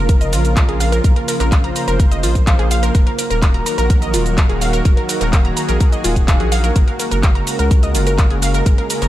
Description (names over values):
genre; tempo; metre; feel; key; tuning
progressive house; 126 BPM; 4/4; straight; unclear; A4 = 440 Hz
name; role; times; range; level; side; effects
lush unison pad; sustained chords; 0.0-9.1 s; Db3 to C5; -22 LUFS; equal; chorus, sidechain pumping
saturated sub bass; bass; 0.0-9.1 s; Eb1 to Db2; -19 LUFS; equal; sidechain pumping
wide unison pluck; arpeggios; 0.1-9.1 s; F4 to Bb5; -22 LUFS; equal; cassette tape, sidechain pumping, dub echo
electronic kick drum; drums; 0.1-8.8 s; none; -13 LUFS; equal; studio reverb
house drum kit; drums; 0.1-9.1 s; cabasa, handclaps, hi-hat; -24 LUFS; right 1 dB; studio reverb, sidechain pumping on hats, sidechain pumping on perc
room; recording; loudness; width
little or no reverb; none; -13 LUFS; side -14 dB against mid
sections
0.0-9.1 A section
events
none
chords
0.0 Bbm; 2.9 Ebm; 6.8 Gbadd9